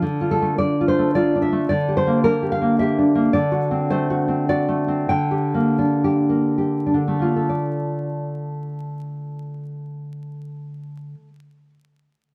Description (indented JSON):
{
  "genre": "romantic piece for solo classical guitar",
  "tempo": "61-112 BPM",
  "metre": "3/4",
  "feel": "rubato",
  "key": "D minor",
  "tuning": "A4 = 439 Hz",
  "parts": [
    { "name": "nylon-string guitar", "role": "solo", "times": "0.0-11.7 s", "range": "D3 to G5", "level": "-21 LUFS", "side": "equal", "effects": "none" }
  ],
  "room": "light reverb",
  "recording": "dark, warm production, vinyl crackle",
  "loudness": "-20 LUFS",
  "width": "mono",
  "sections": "0.0-7.5 A section; 7.5-12.3 B section",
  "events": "slowing down 2.5-7.5",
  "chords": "0.0 Dm; 1.7 Gm/D; 3.3 D7; 5.1 Gm/D; 7.5 Dm"
}